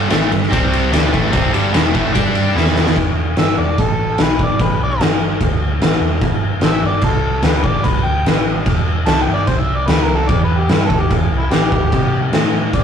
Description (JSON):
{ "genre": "blues rock power trio and southern rock", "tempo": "148 BPM", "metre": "4/4", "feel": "straight", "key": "unclear", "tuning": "A4 = 439 Hz", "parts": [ { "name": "distorted electric guitar", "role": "riff", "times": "0.0-3.0 s", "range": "E2 to G4", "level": "-17 LUFS", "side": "equal", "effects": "overdrive" }, { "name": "hollow-body short-scale picked electric bass", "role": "bass", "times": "0.0-12.8 s", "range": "E1 to C3", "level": "-19 LUFS", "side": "equal", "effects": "none" }, { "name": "oversized low-tuned drum kit", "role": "drums", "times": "0.1-12.8 s", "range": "crash cymbal, kick drum, ride cymbal, snare drum", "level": "-16 LUFS", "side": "equal", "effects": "none" }, { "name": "overdriven harmonica", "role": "melody", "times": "3.4-12.8 s", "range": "E4 to A5", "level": "-21 LUFS", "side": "equal", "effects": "none" } ], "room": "light reverb", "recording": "rough rehearsal-room recording, tube saturation", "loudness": "-13 LUFS", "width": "side -8 dB against mid", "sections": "0.0-3.0 A section; 3.0-12.8 B section", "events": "drum fill 2.6-3.0; harmonica solo 3.0-12.8", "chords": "0.0 G5; 0.5 C5; 0.9 G5; 2.6 E5; 3.0 Em; 3.8 N.C.; 4.2 Gadd9; 5.0 N.C.; 5.8 Esus4; 6.2 Gsus2; 7.0 Am/C; 7.4 Am11; 8.3 N.C.; 9.1 Gsus24; 9.5 Cmaj9; 10.3 Em7; 10.7 C5; 12.3 N.C." }